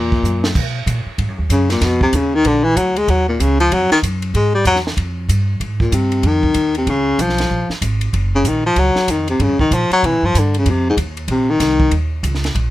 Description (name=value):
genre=jazz, small-group swing and bop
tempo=190 BPM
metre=4/4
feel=swing 62% on 8ths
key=Ab major from 5.6 s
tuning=A4 = 440 Hz
part: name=breathy baritone saxophone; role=melody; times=0.0-11.9 s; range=Ab2 to Ab3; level=-15 LUFS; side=left 1 dB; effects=none
part: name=upright bass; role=bass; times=0.0-12.7 s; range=Gb1 to C3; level=-18 LUFS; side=right 1 dB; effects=none
part: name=compact cocktail drum kit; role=drums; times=0.1-12.6 s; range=crash cymbal, hi-hat, kick drum, ride cymbal, snare drum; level=-23 LUFS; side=right 1 dB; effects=none
room=light reverb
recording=none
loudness=-14 LUFS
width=side -15 dB against mid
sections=0.0-5.6 A section; 5.6-12.7 B section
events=drum fill 0.2-0.6; baritone saxophone solo 5.6-12.7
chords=0.0 Gb7; 0.6 Cbmaj7(no3); 1.8 Dbmaj9; 2.4 Bbaug; 3.1 Ebm9; 4.3 Em; 5.6 Abmaj7; 6.9 Db7; 8.1 Gbmaj7; 9.4 Gm7b5; 10.0 C5; 10.7 F5; 11.9 Eb7(no3)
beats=0.24 | 0.55 0.87 1.18 1.50 | 1.82 2.13 2.45 2.76 | 3.08 3.40 3.71 4.03 | 4.34 4.66 4.97 5.29 | 5.60 5.92 6.24 6.55 | 6.87 7.18 7.50 7.82 | 8.13 8.45 8.76 9.08 | 9.40 9.71 10.03 10.34 | 10.66 10.98 11.29 11.61 | 11.92 12.24 12.55